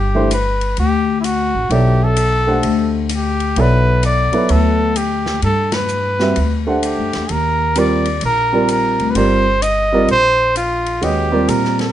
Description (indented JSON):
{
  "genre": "modal jazz",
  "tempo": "129 BPM",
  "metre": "4/4",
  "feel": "swing 65% on 8ths",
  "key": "G major",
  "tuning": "A4 = 440 Hz",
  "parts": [
    { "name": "warm trumpet", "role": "melody", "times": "0.0-11.9 s", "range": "E4 to Eb5", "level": "-18 LUFS", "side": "equal", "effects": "none" },
    { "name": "upright bass", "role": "bass", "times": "0.0-11.9 s", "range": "G1 to Bb2", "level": "-18 LUFS", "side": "left 1 dB", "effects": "none" },
    { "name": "warm upright piano", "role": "accompaniment", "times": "0.1-11.9 s", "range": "E3 to F#5", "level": "-18 LUFS", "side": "right 2 dB", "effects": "none" },
    { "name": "swinging big-band drum kit", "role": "drums", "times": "0.3-11.9 s", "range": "hi-hat, ride cymbal, snare drum", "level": "-28 LUFS", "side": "left 4 dB", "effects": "none" }
  ],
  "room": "moderate club reverb, RT60 0.5 s",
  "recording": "nothing above 10.4 kHz",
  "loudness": "-13 LUFS",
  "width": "side -12 dB against mid",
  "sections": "0.0-11.9 A section",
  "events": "band accent 5.7",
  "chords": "0.0 Gmaj9; 7.3 Ebmaj9",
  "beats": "0.31 0.77 1.24 | 1.71 2.17 2.64 3.10 | 3.57 4.04 4.50 4.97 | 5.43 5.90 6.36 6.83 | 7.30 7.76 8.23 8.69 | 9.16 9.62 10.09 10.56 | 11.02 11.49"
}